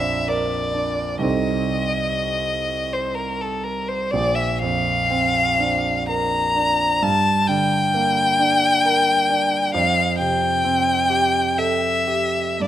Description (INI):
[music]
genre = classical, impressionist duo for violin and grand piano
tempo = 56-67 BPM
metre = 3/4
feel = rubato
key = unclear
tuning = A4 = 440 Hz
[part]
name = rich violin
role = melody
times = 0.0-12.7 s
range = A4 to Bb5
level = -19 LUFS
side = left 2 dB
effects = none
[part]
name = clear concert grand piano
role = accompaniment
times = 0.0-12.7 s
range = Bb1 to C5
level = -23 LUFS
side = right 4 dB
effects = none
[sound]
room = moderate concert hall reverb, RT60 1.8 s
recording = close, detailed microphones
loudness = -18 LUFS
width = side -11 dB against mid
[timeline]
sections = 0.0-12.7 A section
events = none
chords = 0.0 Bbadd9; 1.2 Cm6; 4.1 Bbadd9; 7.0 Gm; 9.7 Fadd9